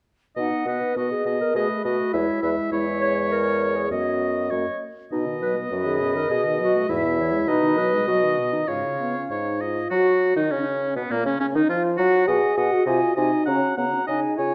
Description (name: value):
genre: quick classical-period movement for wind quintet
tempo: 101 BPM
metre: 2/4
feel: straight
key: B major, F# major from 7.5 s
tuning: A4 = 438 Hz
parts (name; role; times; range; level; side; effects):
- mellow concert flute; melody; 0.4-14.5 s; C#4 to A#5; -31 LUFS; equal; none
- clear oboe; second line; 0.4-14.5 s; A#3 to F#5; -30 LUFS; equal; none
- dark clarinet; accompaniment; 0.4-14.5 s; A#3 to C#5; -28 LUFS; equal; none
- warm French horn; accompaniment; 0.4-14.5 s; G#2 to G#4; -29 LUFS; equal; none
- dark bassoon; bass; 0.4-14.5 s; E2 to F#3; -29 LUFS; equal; none
room: wet recital hall reverb, RT60 1.4 s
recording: dark, warm production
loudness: -23 LUFS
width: mono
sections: 0.4-9.9 A section; 9.9-14.5 B section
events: none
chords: 0.4 B; 1.6 B7; 2.1 E; 2.7 C#m/E; 3.9 B/F#; 4.5 F#; 5.1 B; 6.3 B7; 6.9 E; 7.5 G#m7/B; 8.7 C#/G#; 9.9 F#5; 11.1 F#/A#; 12.3 B; 12.9 G#7/B#; 13.5 F#/C#